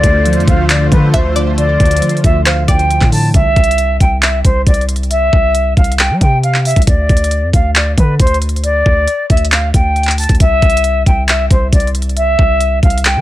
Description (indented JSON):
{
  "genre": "hip hop, trap",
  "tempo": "136 BPM",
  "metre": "4/4",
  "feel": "half-time",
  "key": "unclear",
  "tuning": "A4 = 439 Hz",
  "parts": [
    { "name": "silver concert flute", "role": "melody", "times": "0.0-13.2 s", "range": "B4 to A5", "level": "-15 LUFS", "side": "equal", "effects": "low-pass filter, tape echo" },
    { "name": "muted felt-like synth keys", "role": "accompaniment", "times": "0.0-3.4 s", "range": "D3 to F3", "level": "-17 LUFS", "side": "equal", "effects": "chorus, low-pass filter" },
    { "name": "warm analog pad", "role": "sustained chords", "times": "0.0-3.3 s", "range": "D3 to C5", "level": "-19 LUFS", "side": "equal", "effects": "chorus" },
    { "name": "long sustained 808-style bass", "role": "bass", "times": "0.0-13.2 s", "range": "C2 to G3", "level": "-15 LUFS", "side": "equal", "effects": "none" },
    { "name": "trap drum kit", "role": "drums", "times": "0.0-13.2 s", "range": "handclaps, hi-hat, kick drum", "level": "-12 LUFS", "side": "equal", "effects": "none" },
    { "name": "string-like resonator pluck", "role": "second line", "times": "1.1-3.3 s", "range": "C5 to E5", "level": "-22 LUFS", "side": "equal", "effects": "chorus, phaser, tape echo" }
  ],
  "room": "little or no reverb",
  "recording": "none",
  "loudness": "-9 LUFS",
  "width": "side -14 dB against mid",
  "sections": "0.0-3.3 A section; 3.3-13.2 B section",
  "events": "none",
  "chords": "0.0 Dm7; 3.3 C; 6.9 N.C.; 10.4 C",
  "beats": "0.26 0.70 1.14 | 1.58 2.02 2.46 2.90 | 3.34 3.78 4.23 4.67 | 5.11 5.55 5.99 6.43 | 6.87 7.31 7.75 8.20 | 8.64 9.08 9.52 9.96 | 10.40 10.84 11.28 11.73 | 12.17 12.61 13.05"
}